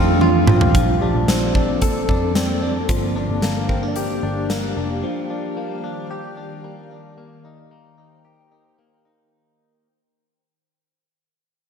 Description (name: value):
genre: dream pop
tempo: 112 BPM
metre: 4/4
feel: straight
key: Bb major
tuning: A4 = 440 Hz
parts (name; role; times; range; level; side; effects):
- ethereal airy pad; sustained chords; 0.0-9.3 s; Eb3 to G5; -24 LUFS; right 1 dB; ensemble chorus, built-in reverb
- direct-recorded clean electric guitar; arpeggios; 0.0-9.9 s; Eb3 to A4; -25 LUFS; left 3 dB; lush chorus, slapback echo, digital delay
- vintage muted picked electric bass; bass; 0.0-5.0 s; F1 to F2; -23 LUFS; equal; none
- huge arena drum kit; drums; 0.2-4.6 s; hi-hat, kick drum, snare drum, toms; -21 LUFS; right 1 dB; none
- soft synth bell; texture; 1.0-4.6 s; G4 to D5; -33 LUFS; right 2 dB; chorus, phaser, digital delay
room: moderate lush hall reverb, RT60 1.7 s, small room ambience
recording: big arena sound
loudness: -17 LUFS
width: side -7 dB against mid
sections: 0.7-9.3 A section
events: drum fill 0.2-0.7; fade-out 0.7-9.3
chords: 0.0 F7; 0.7 Bbmaj9; 2.9 Gm7; 5.0 Ebmaj9; 7.2 Cm7